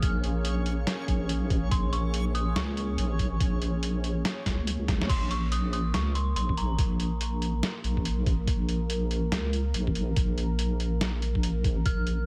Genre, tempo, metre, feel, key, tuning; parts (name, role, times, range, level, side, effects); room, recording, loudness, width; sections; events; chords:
deep dubstep; 142 BPM; 4/4; swing 62% on 16ths, half-time; Bb minor; A4 = 440 Hz
dark detuned synth bell; melody; 0.0-7.8, 11.9-12.3 s; Bb5 to F6; -40 LUFS; equal; chorus, dub echo
dark analog pad; sustained chords; 0.0-12.3 s; Bb3 to Bb4; -40 LUFS; equal; chorus
deep soft wobble bass; bass; 0.0-12.3 s; Bb1 to Db2; -30 LUFS; equal; chorus
electronic kick drum; drums; 0.0-12.0 s; -31 LUFS; equal
trip hop sampler-style drum kit; drums; 0.0-12.2 s; crash cymbal, hi-hat, snare drum; -36 LUFS; equal
backwards swelling texture; texture; 0.0-5.1 s; Db4 to Db5; -42 LUFS; equal; built-in reverb
little or no reverb; -28 LUFS; mono
0.0-5.1 A section; 5.1-12.3 A section
drop 0.0-5.1, 5.1-12.3; drum fill 4.9
0.0 Bbm; 5.1 N.C.